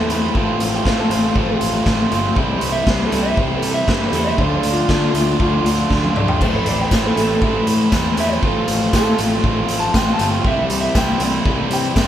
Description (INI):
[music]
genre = indie rock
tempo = 119 BPM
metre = 4/4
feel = straight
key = unclear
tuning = A4 = 439 Hz
[part]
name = electric guitar through a small old amp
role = melody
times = 0.0-12.1 s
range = F4 to A5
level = -23 LUFS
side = equal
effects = none
[part]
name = crunchy overdriven guitar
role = riff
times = 0.0-12.1 s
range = A2 to F4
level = -23 LUFS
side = left 4 dB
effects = none
[part]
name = distorted electric guitar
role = riff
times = 0.0-12.1 s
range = A2 to F4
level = -22 LUFS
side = right 6 dB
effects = overdrive
[part]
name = fuzz picked electric bass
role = bass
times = 0.0-12.1 s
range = G1 to D3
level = -22 LUFS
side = equal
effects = overdrive
[part]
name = raw garage drum kit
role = drums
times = 0.1-12.1 s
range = crash cymbal, hi-hat, kick drum, snare drum, toms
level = -20 LUFS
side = equal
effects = none
[part]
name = tambourine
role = percussion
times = 6.9-12.1 s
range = none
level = -35 LUFS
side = left 8 dB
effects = none
[sound]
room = moderate large studio reverb, RT60 1.2 s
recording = band playing live in one room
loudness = -15 LUFS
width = side -10 dB against mid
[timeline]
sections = 0.0-12.1 A section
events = clean electric guitar solo 0.0-12.1; drum fill 5.9-6.4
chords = 0.4 F/A; 2.4 C; 4.4 Dm; 6.4 Am; 8.4 F/A; 10.4 C